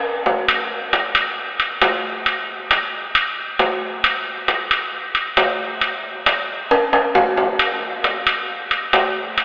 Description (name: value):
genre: latin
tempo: 135 BPM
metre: 4/4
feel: straight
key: none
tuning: none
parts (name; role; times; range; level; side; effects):
- timbales; percussion; 0.3-9.4 s; none; -16 LUFS; equal; none
room: wet cathedral reverb, RT60 4.4 s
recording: recorded in a church or concert hall, telephone sound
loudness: -16 LUFS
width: side -27 dB against mid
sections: 0.5-9.4 A section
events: drum fill 0.0-0.5, 6.7-7.6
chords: none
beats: 0.04 | 0.48 0.93 1.37 1.81 | 2.26 2.70 3.15 3.59 | 4.03 4.48 4.92 5.37 | 5.81 6.26 6.70 7.15 | 7.59 8.04 8.48 8.93 | 9.37